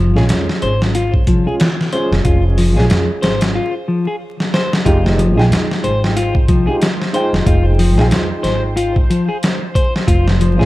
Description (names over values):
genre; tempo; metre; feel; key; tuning
trip hop; 92 BPM; 4/4; swing 58% on 16ths; F minor; A4 = 441 Hz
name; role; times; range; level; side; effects
clean electric guitar; arpeggios; 0.0-10.7 s; F3 to C5; -19 LUFS; left 2 dB; digital delay
upright bass; bass; 0.0-10.7 s; F1 to F2; -15 LUFS; equal; tube saturation
dark upright piano; accompaniment; 0.2-10.7 s; Ab3 to G5; -21 LUFS; right 1 dB; tremolo, tape echo
boom bap sampler-style drum kit; drums; 0.2-10.7 s; hi-hat, kick drum, snare drum; -16 LUFS; equal; none
bowed-like drone; texture; 5.4-10.7 s; C5; -31 LUFS; equal; built-in reverb
room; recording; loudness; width
little or no reverb; dark, warm production, vinyl crackle; -12 LUFS; side -17 dB against mid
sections
0.0-4.9 A section; 4.9-10.7 B section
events
break 3.6-4.9; drum fill 4.4-4.9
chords
0.0 Db/F; 4.9 Fm9; 10.1 Db/F (rootless)